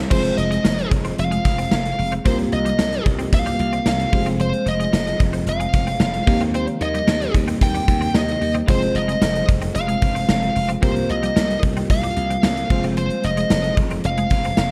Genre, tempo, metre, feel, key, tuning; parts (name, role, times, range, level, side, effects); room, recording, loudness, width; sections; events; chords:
1980s-style pop; 112 BPM; 4/4; straight; F minor; A4 = 439 Hz
FM electric piano; accompaniment; 0.0-14.7 s; C3 to C5; -28 LUFS; equal; chorus
glassy FM pad; sustained chords; 0.0-14.7 s; C3 to F4; -33 LUFS; equal
twelve-string electric guitar; riff; 0.0-14.7 s; F3 to C4; -33 LUFS; equal; ensemble chorus
glassy slap bass; bass; 0.0-14.7 s; F1 to Eb2; -27 LUFS; equal
high-gain lead guitar; melody; 0.1-14.7 s; C5 to G5; -26 LUFS; equal; distortion
gated 80s drum kit; drums; 0.1-14.7 s; crash cymbal, hi-hat, kick drum, snare drum, tambourine; -23 LUFS; equal
light reverb, small room ambience; dark, warm production; -20 LUFS; mono
0.1-14.7 A section
0.1 Fm; 2.3 C7sus4; 4.1 Fm; 6.3 Cm7/Eb; 8.7 Fm; 10.8 C7sus4; 12.7 Fm